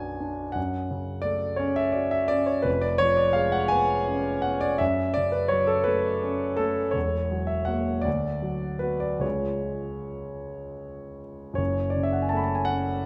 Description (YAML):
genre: classical, romantic nocturne for solo piano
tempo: 49-58 BPM (dotted quarters)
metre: 12/8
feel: rubato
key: F# minor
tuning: A4 = 440 Hz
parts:
  - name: warm concert grand piano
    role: solo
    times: 0.0-13.1 s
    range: E1 to B5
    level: -26 LUFS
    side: equal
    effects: none
room: wet recital hall reverb, RT60 1.8 s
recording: none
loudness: -26 LUFS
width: mono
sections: 0.0-13.1 A section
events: none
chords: 0.0 Bm; 0.6 F#m; 2.7 C#7/E#; 4.8 F#m; 7.0 F#7/E; 8.1 Bm/D; 9.2 C#; 11.6 F#m